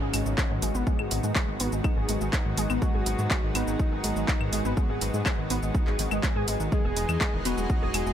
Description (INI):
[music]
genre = melodic techno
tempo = 123 BPM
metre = 4/4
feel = straight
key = G# minor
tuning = A4 = 441 Hz
[part]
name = fat analog lead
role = melody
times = 0.0-8.1 s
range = C#4 to G#4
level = -37 LUFS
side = left 1 dB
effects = sidechain pumping, ping-pong delay
[part]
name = lush unison pad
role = sustained chords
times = 0.0-8.1 s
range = D#3 to G#4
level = -34 LUFS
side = equal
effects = chorus, sidechain pumping
[part]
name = warbly dusty pluck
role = arpeggios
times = 0.0-8.1 s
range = D#3 to G#4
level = -31 LUFS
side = equal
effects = ensemble chorus, sidechain pumping, ping-pong delay
[part]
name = dark detuned saw bass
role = bass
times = 0.0-8.1 s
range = E1 to G#2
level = -30 LUFS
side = equal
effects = sidechain pumping
[part]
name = downlifter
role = sound effects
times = 0.0-2.8 s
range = none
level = -44 LUFS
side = left 1 dB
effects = none
[part]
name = house drum kit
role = drums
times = 0.1-8.1 s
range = claves, handclaps, hi-hat, shaker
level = -31 LUFS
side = equal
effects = overdrive, sidechain pumping on perc, sidechain pumping on hats, sidechain pumping on cymbals
[part]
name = electronic kick drum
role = drums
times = 0.4-7.8 s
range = none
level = -27 LUFS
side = equal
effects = overdrive
[sound]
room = digital ambience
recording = none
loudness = -24 LUFS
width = side -10 dB against mid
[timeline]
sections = 0.0-8.1 A section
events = none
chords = 0.0 G#m7; 6.7 Emaj7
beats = 0.38 | 0.87 1.36 1.84 2.33 | 2.82 3.31 3.79 4.28 | 4.77 5.26 5.75 6.23 | 6.72 7.21 7.70